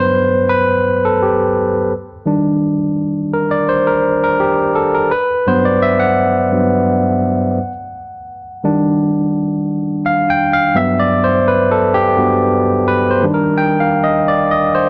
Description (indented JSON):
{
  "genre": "soul",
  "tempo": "85 BPM",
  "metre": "4/4",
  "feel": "straight",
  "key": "G major",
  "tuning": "A4 = 441 Hz",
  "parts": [
    { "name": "barky tine electric piano", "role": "solo", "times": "0.0-14.9 s", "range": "G2 to G5", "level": "-15 LUFS", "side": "equal", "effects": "overdrive" }
  ],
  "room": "light reverb, digital ambience",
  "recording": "lossy compression artefacts",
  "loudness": "-15 LUFS",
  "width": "mono",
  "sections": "0.0-14.9 A section",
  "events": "tine electric piano solo 0.0-14.9",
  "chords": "0.0 Gmaj7; 1.9 Ebmaj7; 5.1 Gmaj7; 7.6 Ebmaj7; 10.8 Gmaj7; 13.2 Ebmaj7"
}